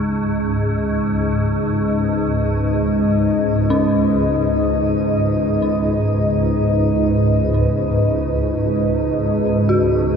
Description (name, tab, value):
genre	dark ambient drone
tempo	free time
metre	none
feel	none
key	unclear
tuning	A4 = 440 Hz
part	deep dark ambient pad	sustained chords	0.0-10.2 s	C#3 to D#5	-18 LUFS	equal	chorus, built-in reverb, shimmer reverb
part	swarming drone	drone	0.0-10.2 s	C#2 to G#2	-20 LUFS	equal	built-in reverb
part	dark detuned synth bell	arpeggios	3.7-10.2 s	C#4 to F#4	-24 LUFS	left 1 dB	chorus, ping-pong delay, shimmer reverb
room	wet cathedral reverb, RT60 6.1 s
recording	none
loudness	-16 LUFS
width	side -6 dB against mid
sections	0.0-10.2 A section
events	none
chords	0.0 G#m/C#